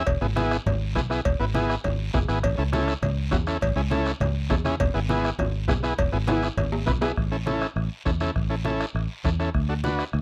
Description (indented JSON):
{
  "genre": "latin, cumbia",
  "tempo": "203 BPM",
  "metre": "4/4",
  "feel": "straight",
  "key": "A major",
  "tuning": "A4 = 439 Hz",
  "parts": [
    { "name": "overdriven combo organ", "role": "accompaniment", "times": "0.0-10.0 s", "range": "B3 to B4", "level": "-29 LUFS", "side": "equal", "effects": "none" },
    { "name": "fingered electric bass", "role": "bass", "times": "0.1-10.2 s", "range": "E1 to E2", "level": "-29 LUFS", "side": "equal", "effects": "none" },
    { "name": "bombo", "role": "percussion", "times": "0.1-10.2 s", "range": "none", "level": "-32 LUFS", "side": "equal", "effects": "none" },
    { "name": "congas", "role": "percussion", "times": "0.1-10.2 s", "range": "none", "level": "-34 LUFS", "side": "equal", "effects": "none" },
    { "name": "cowbell and timbales", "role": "percussion", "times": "0.1-7.1 s", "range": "none", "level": "-32 LUFS", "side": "equal", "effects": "none" },
    { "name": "guiro", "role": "percussion", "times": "0.1-10.2 s", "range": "none", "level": "-43 LUFS", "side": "equal", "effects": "none" }
  ],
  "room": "little or no reverb",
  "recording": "dry, close 1970s-style studio recording",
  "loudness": "-25 LUFS",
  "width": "mono",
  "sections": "0.0-7.2 A section; 7.2-10.2 B section",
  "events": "drum fill 6.3-7.2",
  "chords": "0.1 E; 2.4 A; 4.8 E; 7.2 A; 9.5 D",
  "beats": "| 0.07 0.36 0.66 0.96 | 1.25 1.55 1.84 2.14 | 2.43 2.73 3.02 3.32 | 3.62 3.91 4.21 4.50 | 4.80 5.09 5.39 5.68 | 5.98 6.28 6.57 6.87 | 7.17 7.46 7.76 8.05 | 8.35 8.65 8.94 9.24 | 9.54 9.83 10.13"
}